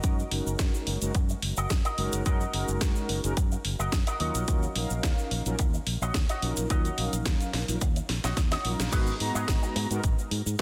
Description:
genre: nu-disco, nu disco.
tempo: 108 BPM.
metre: 4/4.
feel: swing 53% on 16ths.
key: G# dorian.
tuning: A4 = 443 Hz.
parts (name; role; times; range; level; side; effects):
mellow synth brass; accompaniment; 0.0-10.0 s; F#3 to A#5; -36 LUFS; equal; chorus, tape echo.
electric guitar with an envelope filter; riff; 0.0-10.6 s; F#4 to D#5; -37 LUFS; equal; analog chorus, vintage 12-bit sampler grit, low-pass filter, tape echo.
fingered electric bass; bass; 0.0-10.6 s; F#1 to G#2; -34 LUFS; equal; none.
electronic kick drum; drums; 0.0-10.6 s; none; -29 LUFS; equal; none.
house drum kit; drums; 0.0-10.6 s; crash cymbal, hi-hat, snare drum; -36 LUFS; equal; none.
egg shaker; percussion; 0.0-10.6 s; none; -42 LUFS; equal; none.
room: light reverb, digital ambience.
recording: dense, heavily limited modern master.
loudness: -28 LUFS.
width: mono.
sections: 0.0-8.9 A section; 8.9-10.6 B section.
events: drum fill 8.1-8.9; band accent 8.8; drop 8.9-10.6.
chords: 0.0 F#6; 4.2 D#m7; 8.9 G#m7.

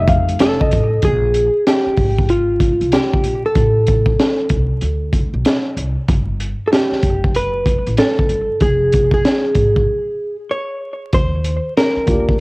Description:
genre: hip hop, jazz-hop.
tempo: 95 BPM.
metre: 4/4.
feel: swing 65% on 16ths.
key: unclear.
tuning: A4 = 438 Hz.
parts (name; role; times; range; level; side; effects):
dark baby grand piano; accompaniment; 0.0-1.0, 12.1-12.3 s; G3 to F5; -19 LUFS; left 1 dB; cassette tape.
upright bass; bass; 0.0-12.4 s; F1 to F2; -20 LUFS; equal; transformer saturation.
crunchy breakbeat drum kit; drums; 0.1-12.4 s; hi-hat, kick drum, snare drum; -16 LUFS; equal; vintage 12-bit sampler grit, cassette tape.
hollow-body jazz guitar; melody; 0.4-12.4 s; F4 to Db5; -18 LUFS; equal; cassette tape, tape echo.
room: light reverb, small room ambience.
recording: home recording on cassette, vinyl crackle.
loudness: -14 LUFS.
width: side -26 dB against mid.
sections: 0.0-1.0 A section; 1.0-12.4 B section.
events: grand piano solo 0.0-1.0; break 9.9-11.1.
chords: 0.0 F7; 1.0 Bb5; 3.6 Am; 4.8 N.C.; 6.1 Gmaj7; 8.6 Fm; 9.9 N.C.; 11.1 Ebmaj9.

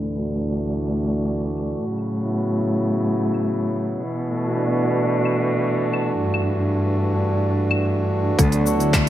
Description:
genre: folktronica.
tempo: 110 BPM.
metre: 4/4.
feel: straight.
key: D major.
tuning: A4 = 440 Hz.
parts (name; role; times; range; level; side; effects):
pedal harmonium; sustained chords; 0.0-9.1 s; C#3 to D5; -23 LUFS; equal; vintage 12-bit sampler grit, low-pass filter.
concert harp; arpeggios; 0.0-4.8, 8.4-9.1 s; D3 to A4; -26 LUFS; left 3 dB; ping-pong delay.
rich cello; bass; 0.0-8.6 s; D2 to B2; -23 LUFS; equal; none.
organic electronic drum kit; drums; 0.9-9.0 s; claves, handclaps, hi-hat, shaker; -26 LUFS; left 2 dB; overdrive, low-pass filter on hats, low-pass filter on snare, low-pass filter on perc, low-pass filter on room.
electronic kick drum; drums; 8.4-9.0 s; none; -19 LUFS; right 1 dB; overdrive.
room: light reverb, small room ambience.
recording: low-pass filter.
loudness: -19 LUFS.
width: side -12 dB against mid.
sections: 0.0-8.4 A section.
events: filter sweep on harmonium 0.0-8.4; filter sweep 0.0-8.4.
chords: 0.0 D; 1.8 A; 4.0 Bm; 6.2 Gsus2; 8.4 D.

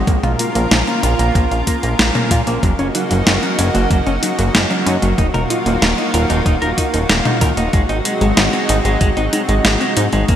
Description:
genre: synthwave.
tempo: 94 BPM.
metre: 4/4.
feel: straight.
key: unclear.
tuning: A4 = 439 Hz.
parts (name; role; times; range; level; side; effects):
lush unison pad; sustained chords; 0.0-10.4 s; C3 to Bb4; -20 LUFS; equal; chorus, sidechain pumping.
analog pluck; arpeggios; 0.0-10.4 s; Ab3 to F4; -24 LUFS; equal; chorus, digital delay.
clean electric guitar; riff; 0.0-10.4 s; Gb3 to Bb4; -23 LUFS; right 1 dB; wide subtle chorus, low-pass filter, digital delay.
chorused synth bass; bass; 0.0-10.4 s; Eb1 to Bb2; -18 LUFS; equal; sidechain pumping.
clean 12-bit digital drum machine; drums; 0.1-10.4 s; hi-hat, snare drum, toms; -19 LUFS; equal; gated reverb.
electronic kick drum; drums; 0.1-10.4 s; none; -16 LUFS; equal; none.
room: moderate lush hall reverb, RT60 2.7 s.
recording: bright 1980s-style digital production.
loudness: -13 LUFS.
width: side -10 dB against mid.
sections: 0.0-10.4 A section.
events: filter sweep on synth arpeggio sound 0.0-10.4; filter sweep on clean electric guitar 0.0-10.4.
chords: 0.1 Bbm; 2.6 Gb6; 5.2 Ebmadd9; 7.7 Ab7.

